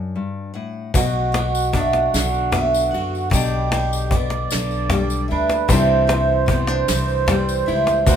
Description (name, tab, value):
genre	acoustic folk duo or small band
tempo	50 BPM (dotted quarters)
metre	6/8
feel	straight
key	unclear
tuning	A4 = 440 Hz
part	picked acoustic archtop guitar	melody	0.0-8.2 s	C5 to B5	-22 LUFS	right 3 dB	none
part	nylon-string guitar	accompaniment	0.0-8.2 s	D2 to F#4	-24 LUFS	left 5 dB	none
part	upright bass	bass	0.9-8.2 s	B1 to F#2	-23 LUFS	equal	none
part	cajon	percussion	0.9-8.2 s	none	-22 LUFS	left 3 dB	none
part	tambourine	percussion	0.9-8.2 s	none	-31 LUFS	left 8 dB	none
part	mellow accordion	second line	1.0-8.2 s	F#4 to D5	-23 LUFS	right 7 dB	none
part	soft brush drum kit	drums	1.0-8.2 s	kick drum, ride cymbal, snare drum	-26 LUFS	equal	none
room	moderate studio reverb, RT60 0.5 s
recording	minimal, uncompressed stereo recording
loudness	-17 LUFS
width	side -8 dB against mid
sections	0.0-8.2 A section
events	none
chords	0.0 D; 0.9 Bm; 3.3 G/B; 5.7 Cadd9